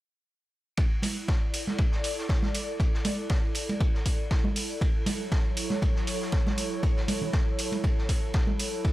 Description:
deep house; 119 BPM; 4/4; swing 54% on 16ths; A4 = 440 Hz
electronic kick drum; drums; 0.8-8.9 s; -26 LUFS; equal
raw garage drum kit; drums; 0.8-8.9 s; ride cymbal, snare drum; -39 LUFS; equal; high-pass filter on cymbals, high-pass filter on snare, high-pass filter on room
airy breathy pad; texture; 0.8-8.9 s; F#3 to D5; -34 LUFS; equal; chorus, sidechain pumping
electronic hi-hat; drums; 1.0-8.7 s; -34 LUFS; right 2 dB
congas; percussion; 1.0-8.6 s; -32 LUFS; right 2 dB
studio ambience; -25 LUFS; side -16 dB against mid
0.8-8.9 A section
0.8 E7sus4; 4.8 F#m7

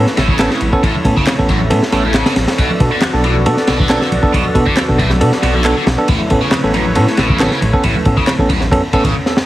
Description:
breakbeat, breaks; 137 BPM; 4/4; straight; A4 = 440 Hz
phased analog pad; sustained chords; 0.0-9.1 s; A3 to D5; -22 LUFS; equal; phaser, chorus, sidechain pumping
bell-like tine electric piano; stabs; 0.0-9.0 s; B3 to A4; -18 LUFS; right 1 dB; digital delay
dark detuned saw bass; bass; 0.0-9.1 s; A1 to B2; -17 LUFS; equal
crunchy breakbeat drum kit; drums; 0.1-9.5 s; kick drum, ride cymbal, snare drum; -16 LUFS; equal
biting overdriven guitar; riff; 0.2-9.1 s; F#2 to F#3; -20 LUFS; equal; phaser, digital delay
congas; percussion; 0.2-9.1 s; -25 LUFS; right 1 dB
electronic handclaps; drums; 0.4-8.4 s; -25 LUFS; equal
light reverb; heavily compressed radio sound, multiband compression, vinyl crackle; -11 LUFS; side -15 dB against mid
0.0-9.5 A section
drum fill 9.3
0.0 Aadd9; 2.6 Bm7; 6.1 Aadd9

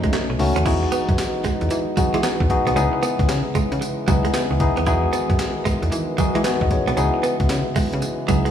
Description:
R&B, new jack swing; 114 BPM; 4/4; swing 65% on 16ths; A4 = 442 Hz
tine electric piano; accompaniment; 0.0-8.5 s; A3 to D#5; -23 LUFS; left 3 dB
warm brass ensemble; sustained chords; 0.0-8.5 s; C#3 to D#4; -28 LUFS; right 1 dB
direct-recorded clean electric guitar; riff; 0.0-8.5 s; F#3 to E4; -26 LUFS; right 6 dB; lush chorus
slap-like FM bass; bass; 0.0-8.5 s; A1 to E3; -23 LUFS; equal
breakbeat sampler-style drum kit; drums; 0.0-8.5 s; crash cymbal, handclaps, hi-hat, kick drum, snare drum, tambourine; -24 LUFS; equal
light reverb, digital ambience; small room reverb; -18 LUFS; side -9 dB against mid
0.7-8.5 A section
0.0 B9; 0.7 Emaj7; 2.8 C#m7; 4.9 Emaj7; 7.0 C#m7

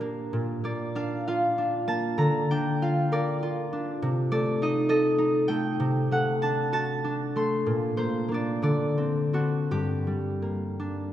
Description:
classical, solo harp piece; 54-68 BPM (dotted quarters); 6/8; rubato; A4 = 440 Hz
concert harp; solo; 0.0-11.1 s; G2 to C6; -24 LUFS; equal
wet church reverb, RT60 3.0 s; heard from further back in the room; -24 LUFS; side -11 dB against mid
0.0-11.1 A section
0.3 Bb; 2.2 Bb/D; 4.0 Adim/C; 5.8 D7/C; 7.7 Bbadd9; 8.7 D7; 9.7 Gm

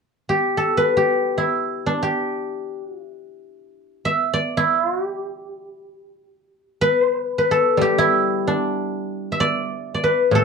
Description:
chinese traditional, Chinese solo plucked strings; free time; G gong mode; A4 = 439 Hz
guzheng; solo; 0.3-10.4 s; A2 to E5; -18 LUFS; equal
light reverb; dark, warm production; -18 LUFS; side -5 dB against mid
0.0-6.5 A section; 6.5-10.4 B section

